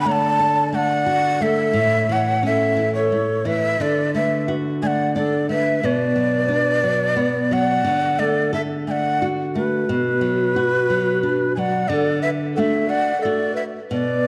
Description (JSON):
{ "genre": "andean folk, Andean ensemble", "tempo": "89 BPM", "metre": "3/4", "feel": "straight", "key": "unclear", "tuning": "A4 = 440 Hz", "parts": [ { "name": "breathy bright large quena", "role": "melody", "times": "0.0-14.3 s", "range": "B4 to B5", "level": "-23 LUFS", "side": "equal", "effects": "none" }, { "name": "polished pan flute", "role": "second line", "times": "0.0-14.3 s", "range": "F#4 to D5", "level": "-26 LUFS", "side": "equal", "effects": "none" }, { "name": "flamenco guitar", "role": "accompaniment", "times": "0.0-14.3 s", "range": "A2 to A4", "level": "-25 LUFS", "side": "equal", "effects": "none" } ], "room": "moderate scoring stage reverb, RT60 1.8 s", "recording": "dark, warm production", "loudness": "-20 LUFS", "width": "mono", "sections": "0.0-11.9 A section; 11.9-14.3 A section", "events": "none", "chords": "0.0 D; 1.8 A; 3.8 D; 5.8 Bm; 7.9 D; 9.9 Bm; 11.9 D", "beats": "0.41 1.09 | 1.77 2.45 3.13 | 3.81 4.49 5.17 | 5.84 6.52 7.19 | 7.87 8.54 9.21 | 9.89 10.56 11.23 | 11.90 12.57 13.24 | 13.91" }